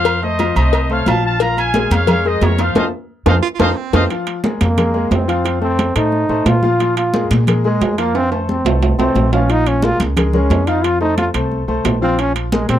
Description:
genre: latin, salsa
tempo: 178 BPM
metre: 4/4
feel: straight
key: Bb minor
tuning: A4 = 440 Hz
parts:
  - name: bright trumpet section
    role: melody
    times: 0.0-4.0 s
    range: Bb4 to Bb5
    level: -19 LUFS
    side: equal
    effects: none
  - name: bright upright piano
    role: accompaniment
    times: 0.0-12.8 s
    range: F3 to F5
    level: -20 LUFS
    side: left 4 dB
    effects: none
  - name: upright bass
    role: bass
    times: 0.0-12.8 s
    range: Bb1 to Bb2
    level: -18 LUFS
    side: equal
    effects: none
  - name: agogo bells and timbales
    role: percussion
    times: 0.1-12.8 s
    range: none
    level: -22 LUFS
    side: right 7 dB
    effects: none
  - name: congas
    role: percussion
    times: 0.1-12.8 s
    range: none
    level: -21 LUFS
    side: equal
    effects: none
  - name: cowbell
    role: percussion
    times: 0.1-4.0 s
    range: none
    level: -21 LUFS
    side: left 11 dB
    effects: none
  - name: edgy baritone saxophone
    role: second line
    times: 3.4-4.1 s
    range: C4 to F4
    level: -22 LUFS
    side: right 10 dB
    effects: none
  - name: bright trombone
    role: melody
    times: 4.6-12.8 s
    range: F3 to F4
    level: -18 LUFS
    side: right 1 dB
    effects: none
room: light reverb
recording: dry, close 1970s-style studio recording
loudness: -13 LUFS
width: side -11 dB against mid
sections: 0.0-4.1 A section; 4.1-12.8 B section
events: band accent 2.8-4.1; drum fill 3.3-4.1, 8.1-9.5; trombone solo 4.1-12.8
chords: 0.1 F7; 1.4 Bbm7; 2.8 F7; 4.1 Bb5; 5.5 F7; 6.8 Bb5; 8.1 F; 9.5 Bbm7; 10.8 F; 12.2 Bb5

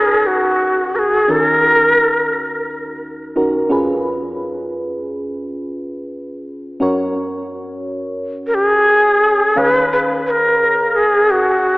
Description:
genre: pop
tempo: free time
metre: none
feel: none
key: unclear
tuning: A4 = 441 Hz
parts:
  - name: breathy shakuhachi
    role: melody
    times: 0.0-2.7, 8.5-11.8 s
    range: Gb4 to Cb5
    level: -12 LUFS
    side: equal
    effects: tape echo
  - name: mellow FM electric piano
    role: accompaniment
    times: 0.0-11.8 s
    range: Eb2 to F5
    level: -21 LUFS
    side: equal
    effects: chorus, phaser
room: wet lush hall reverb, RT60 2.9 s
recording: dreamy mix soaked in reverb, AM radio sound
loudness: -13 LUFS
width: side -24 dB against mid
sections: 0.0-9.6 A section; 9.6-11.8 B section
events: none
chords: 0.0 Ebm7; 3.7 Db7/F; 6.8 Gb; 9.6 Db/Eb

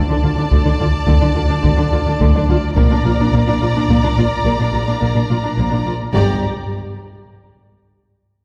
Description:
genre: cinematic, hybrid orchestral and electronic film score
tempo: 71 BPM (dotted quarters)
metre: 6/8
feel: straight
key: unclear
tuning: A4 = 444 Hz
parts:
  - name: warm symphonic violin section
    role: melody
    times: 0.0-6.5 s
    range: A5 to Bb5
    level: -29 LUFS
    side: equal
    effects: none
  - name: warm symphonic violin section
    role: second line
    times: 0.0-6.5 s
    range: D5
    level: -27 LUFS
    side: equal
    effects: none
  - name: warm symphonic viola section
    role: accompaniment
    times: 0.1-6.5 s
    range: A3 to G4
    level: -25 LUFS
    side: equal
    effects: none
  - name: dark symphonic cello section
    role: bass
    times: 0.1-6.5 s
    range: G2 to D3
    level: -21 LUFS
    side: equal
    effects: none
  - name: clear chamber double bass section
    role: bass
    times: 0.2-6.5 s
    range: G1 to D2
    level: -22 LUFS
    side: equal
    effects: none
  - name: taiko ensemble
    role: drums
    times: 0.5-7.2 s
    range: none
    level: -21 LUFS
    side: equal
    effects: none
room: wet scoring stage reverb, RT60 1.9 s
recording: heard from further back in the room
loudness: -16 LUFS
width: mono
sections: 0.0-6.1 A section; 6.1-7.8 B section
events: none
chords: 0.0 D5; 2.8 Bb; 6.1 N.C.

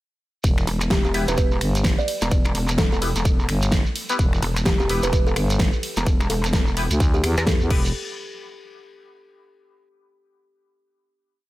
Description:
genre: bass house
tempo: 128 BPM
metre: 4/4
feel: swing 60% on 16ths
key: E minor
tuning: A4 = 443 Hz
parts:
  - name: growling FM bass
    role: bass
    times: 0.4-7.9 s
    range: E1 to E2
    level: -22 LUFS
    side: equal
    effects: overdrive, sidechain pumping
  - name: big-room dance drum kit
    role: drums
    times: 0.4-7.8 s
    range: crash cymbal, finger snaps, hi-hat, ride cymbal, snare drum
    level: -27 LUFS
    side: equal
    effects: none
  - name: electronic kick drum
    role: drums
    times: 0.4-7.8 s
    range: none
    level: -20 LUFS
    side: equal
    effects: none
  - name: shekere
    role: percussion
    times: 0.4-7.9 s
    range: none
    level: -32 LUFS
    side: right 2 dB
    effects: none
  - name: pulsing pluck wobble bass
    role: bass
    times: 0.7-7.6 s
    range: E1 to E2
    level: -23 LUFS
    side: equal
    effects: chorus, sidechain pumping
  - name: kalimba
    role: melody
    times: 0.9-7.9 s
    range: G4 to D5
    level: -29 LUFS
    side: right 1 dB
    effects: dub echo
  - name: band-passed chord stab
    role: stabs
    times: 1.1-7.9 s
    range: B3 to B4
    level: -30 LUFS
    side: left 2 dB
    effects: phaser, vintage 12-bit sampler grit, sidechain pumping, dub echo
room: little or no reverb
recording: none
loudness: -18 LUFS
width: side -17 dB against mid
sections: 0.4-7.9 drop; 7.9-9.8 final hit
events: drop 0.4-7.9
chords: 0.4 Em; 7.9 N.C.

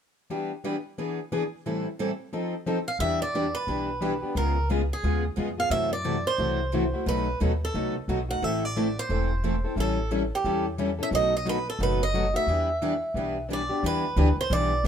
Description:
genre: acoustic string swing (jazz manouche)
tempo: 177 BPM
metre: 4/4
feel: swing 61% on 8ths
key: E minor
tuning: A4 = 441 Hz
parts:
  - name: picked plugged-in steel-string acoustic guitar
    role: accompaniment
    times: 0.3-14.9 s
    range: A2 to A4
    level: -29 LUFS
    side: left 3 dB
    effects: none
  - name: picked steel-string acoustic guitar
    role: accompaniment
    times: 0.3-14.9 s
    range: A2 to B4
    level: -34 LUFS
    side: right 7 dB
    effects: none
  - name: picked swing-style acoustic guitar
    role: melody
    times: 2.9-14.9 s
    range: G4 to F#5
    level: -28 LUFS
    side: right 2 dB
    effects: none
  - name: upright bass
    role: bass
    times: 3.0-14.9 s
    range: E1 to F#2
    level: -29 LUFS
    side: equal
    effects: none
room: light reverb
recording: minimal, uncompressed stereo recording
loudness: -24 LUFS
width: side -8 dB against mid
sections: 0.3-3.0 A section; 3.0-13.8 B section; 13.8-14.9 C section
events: none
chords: 0.3 Em7; 1.0 E7; 1.6 Am7; 2.3 F7; 3.0 Em7; 4.4 C#7; 5.7 F#m7b5; 7.1 B7; 8.4 Am; 9.8 A7; 11.1 B7; 12.5 Em7

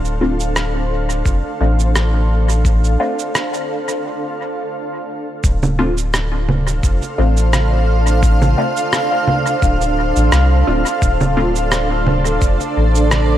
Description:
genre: ambient dub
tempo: 86 BPM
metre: 4/4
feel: swing 54% on 16ths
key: D minor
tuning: A4 = 442 Hz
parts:
  - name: granular cloud pad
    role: sustained chords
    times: 0.0-13.4 s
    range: D4 to F5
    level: -20 LUFS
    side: right 1 dB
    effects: built-in reverb
  - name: soft dub sub bass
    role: bass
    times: 0.0-13.4 s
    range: D1 to C2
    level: -16 LUFS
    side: equal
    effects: none
  - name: electronic shaker, rim click and congas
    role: drums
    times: 0.1-13.3 s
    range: none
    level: -21 LUFS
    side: right 2 dB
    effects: dub echo
  - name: filtered dub chord stab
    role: stabs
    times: 0.2-11.5 s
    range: A3 to F4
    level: -24 LUFS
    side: left 2 dB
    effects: phaser, wide subtle chorus, dub echo
  - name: electronic kick drum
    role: drums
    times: 1.3-12.6 s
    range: none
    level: -17 LUFS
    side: equal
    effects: none
room: light reverb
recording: none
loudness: -14 LUFS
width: side -12 dB against mid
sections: 0.0-5.4 A section; 5.4-13.4 B section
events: break 4.0-5.4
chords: 0.0 Dm7

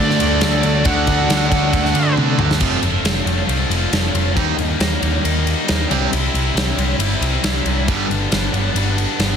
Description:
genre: hard rock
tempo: 137 BPM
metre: 4/4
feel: straight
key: unclear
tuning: A4 = 440 Hz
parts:
  - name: biting lead guitar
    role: melody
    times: 0.0-2.1 s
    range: D5 to F#5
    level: -21 LUFS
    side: equal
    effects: overdrive
  - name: octave-fuzz lead guitar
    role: second line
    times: 0.0-2.1 s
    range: A3 to D4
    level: -26 LUFS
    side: right 3 dB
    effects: distortion
  - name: cranked stack guitar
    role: riff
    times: 0.0-8.1 s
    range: F2 to Eb4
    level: -25 LUFS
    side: left 12 dB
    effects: overdrive
  - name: distorted electric guitar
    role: riff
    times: 0.0-8.1 s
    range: F2 to Eb4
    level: -21 LUFS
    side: right 13 dB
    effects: overdrive
  - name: tight distorted guitar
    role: riff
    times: 0.0-9.4 s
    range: G2 to F#4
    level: -22 LUFS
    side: left 1 dB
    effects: distortion
  - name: overdriven picked electric bass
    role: bass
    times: 0.0-9.3 s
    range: F1 to C3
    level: -20 LUFS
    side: equal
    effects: none
  - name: big rock drum kit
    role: drums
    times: 0.1-9.3 s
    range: crash cymbal, kick drum, ride cymbal, snare drum, toms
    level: -20 LUFS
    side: equal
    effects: none
room: light reverb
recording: dense, heavily limited modern master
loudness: -15 LUFS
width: side -7 dB against mid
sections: 0.0-2.6 A section; 2.6-9.4 B section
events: drum fill 2.2-2.6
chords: 0.0 D; 2.6 F; 4.4 Eb; 5.9 C; 7.9 G

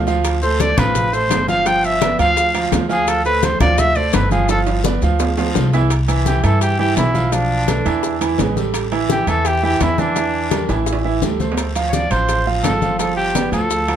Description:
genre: Afro-Cuban jazz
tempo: 169 BPM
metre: 4/4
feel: straight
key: C major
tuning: A4 = 440 Hz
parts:
  - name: upright bass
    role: bass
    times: 0.0-14.0 s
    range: G1 to G2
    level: -20 LUFS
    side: equal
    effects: none
  - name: warm grand piano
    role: accompaniment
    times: 0.1-14.0 s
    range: E3 to F5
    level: -20 LUFS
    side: right 5 dB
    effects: none
  - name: bongos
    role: percussion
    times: 0.1-14.0 s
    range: none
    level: -26 LUFS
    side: left 10 dB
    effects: none
  - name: congas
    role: percussion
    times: 0.1-14.0 s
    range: none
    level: -24 LUFS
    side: left 3 dB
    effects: none
  - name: guiro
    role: percussion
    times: 0.1-14.0 s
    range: none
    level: -33 LUFS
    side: left 3 dB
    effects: none
  - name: maracas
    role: percussion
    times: 0.1-13.9 s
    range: none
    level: -30 LUFS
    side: left 8 dB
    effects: none
  - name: timbales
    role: percussion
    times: 0.2-14.0 s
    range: none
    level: -27 LUFS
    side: right 5 dB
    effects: none
  - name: clear trumpet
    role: melody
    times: 0.4-14.0 s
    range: D4 to G5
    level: -19 LUFS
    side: equal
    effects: plate reverb
room: light reverb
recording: none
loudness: -15 LUFS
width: side -9 dB against mid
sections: 0.0-5.9 A section; 5.9-14.0 B section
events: trumpet solo 0.0-5.9; drum fill 4.5-5.9, 10.7-11.6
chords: 0.2 Dm7; 1.7 G7; 3.1 Dm7; 4.5 G7; 5.9 Cmaj7; 7.3 Bm7b5; 8.0 E7; 8.7 A5; 10.2 Em7b5; 10.9 A5; 11.6 Dm7; 13.0 G9

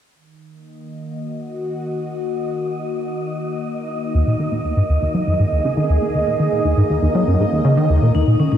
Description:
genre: ambient, sequencer-driven space music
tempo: 120 BPM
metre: 4/4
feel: straight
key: Eb minor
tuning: A4 = 440 Hz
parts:
  - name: phased analog pad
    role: sustained chords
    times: 0.1-8.6 s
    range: Eb3 to Eb5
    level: -22 LUFS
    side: right 1 dB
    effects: phaser, chorus, cassette tape, shimmer reverb
  - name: wind-like tuned noise texture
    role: texture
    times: 1.9-8.6 s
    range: Bb3 to Eb5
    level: -29 LUFS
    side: right 1 dB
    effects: built-in reverb, cassette tape, shimmer reverb
  - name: plucky analog bass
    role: riff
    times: 4.1-8.6 s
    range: Eb2 to Gb3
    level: -16 LUFS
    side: equal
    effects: ensemble chorus, cassette tape, analog delay
  - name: vibraphone with hard mallets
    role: arpeggios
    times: 8.1-8.6 s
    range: Db4 to Eb4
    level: -21 LUFS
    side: left 8 dB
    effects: auto-pan, cassette tape, analog delay
room: wet lush hall reverb, RT60 2.7 s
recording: home recording on cassette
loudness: -17 LUFS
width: side -10 dB against mid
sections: 0.1-8.1 A section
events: fade-in on synth texture 0.1-8.1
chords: 0.1 Ebm

